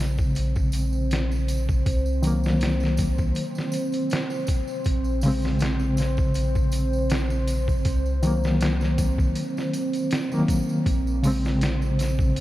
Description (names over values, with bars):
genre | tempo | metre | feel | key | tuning
trip hop | 80 BPM | 4/4 | swing 54% on 16ths | Bb minor | A4 = 441 Hz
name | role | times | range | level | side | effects
reed electric piano | accompaniment | 0.0-12.4 s | Db3 to C4 | -26 LUFS | left 1 dB | fast tremolo, tape echo
deep dark ambient pad | sustained chords | 0.0-12.4 s | C4 to C5 | -29 LUFS | right 2 dB | chorus, built-in reverb
soft dub sub bass | bass | 0.0-12.4 s | Bb1 to C2 | -25 LUFS | equal | none
trip hop sampler-style drum kit | drums | 0.0-12.4 s | hi-hat, kick drum, snare drum | -27 LUFS | equal | none
tambourine | percussion | 0.2-12.4 s | none | -43 LUFS | right 2 dB | none
room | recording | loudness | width
moderate cathedral reverb, RT60 5.8 s | dreamy mix soaked in reverb, vinyl crackle | -21 LUFS | side -15 dB against mid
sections
0.0-12.4 A section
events
none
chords
0.0 Bbm7; 1.9 Cm7b5; 4.9 Bbm7; 7.9 Cm7b5; 10.9 Bbm7